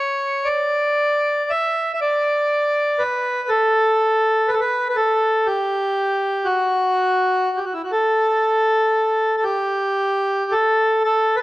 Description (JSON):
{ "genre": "celtic folk", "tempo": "38-41 BPM (dotted quarters)", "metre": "6/8", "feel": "rubato", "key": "A mixolydian", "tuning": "A4 = 441 Hz", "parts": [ { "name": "accordion", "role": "solo", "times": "0.0-11.4 s", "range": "E4 to E5", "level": "-17 LUFS", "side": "equal", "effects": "none" } ], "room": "moderate recital hall reverb, RT60 1.4 s", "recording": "dark, warm production", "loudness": "-17 LUFS", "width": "side -18 dB against mid", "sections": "0.0-11.0 A section", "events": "none", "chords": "none" }